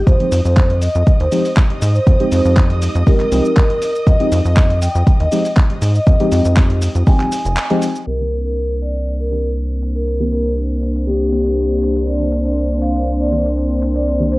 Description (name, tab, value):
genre	deep house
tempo	120 BPM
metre	4/4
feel	swing 53% on 16ths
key	C minor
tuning	A4 = 440 Hz
part	rubbery square bass	bass	0.0-14.4 s	F1 to Ab2	-17 LUFS	equal	tube saturation, sidechain pumping
part	dark studio violin section	texture	0.0-8.1 s	Eb5 to Eb6	-32 LUFS	right 1 dB	none
part	vibraphone with soft mallets	melody	0.1-14.4 s	G4 to Ab5	-21 LUFS	equal	vintage 12-bit sampler grit, analog delay
part	dusty soul sampler-style drum kit	drums	0.1-14.4 s	handclaps, hi-hat, shaker	-26 LUFS	equal	low-pass filter on hats, studio reverb, low-pass filter on perc, low-pass filter on snare
part	electronic kick drum	drums	0.1-7.2 s	none	-12 LUFS	equal	overdrive, studio reverb
part	deep mellow chord stab	stabs	0.2-14.4 s	Eb3 to G4	-20 LUFS	equal	chorus, phaser, sidechain pumping, analog delay
part	warm analog pad	sustained chords	8.1-14.4 s	Bb3 to C5	-21 LUFS	equal	chorus, sidechain pumping
room	digital ambience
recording	dry, gritty hardware recording, cassette tape, low-pass filter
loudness	-13 LUFS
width	side -20 dB against mid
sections	0.0-8.1 A section; 8.1-14.4 B section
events	break 7.6-8.1; band accent 7.6; filter sweep on analog synth pad 8.1-14.4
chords	0.1 Fm9; 8.1 Cm9